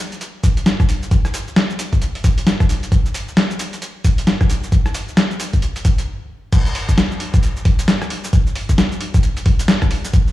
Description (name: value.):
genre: UK garage.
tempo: 133 BPM.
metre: 4/4.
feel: swing 60% on 16ths.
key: none.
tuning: none.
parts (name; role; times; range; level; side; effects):
boom bap sampler-style drum kit; drums; 0.1-10.3 s; cabasa, crash cymbal, hi-hat, rim click, snare drum; -19 LUFS; left 1 dB; overdrive.
electronic kick drum; drums; 0.4-10.2 s; none; -15 LUFS; equal; overdrive.
room: light reverb, digital ambience.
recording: played on a big sound system in a bare room, large studio reverb.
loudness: -15 LUFS.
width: side -15 dB against mid.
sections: 0.0-6.5 A section; 6.5-10.3 B section.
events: stop 6.1-6.5; drop 6.5-10.3.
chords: none.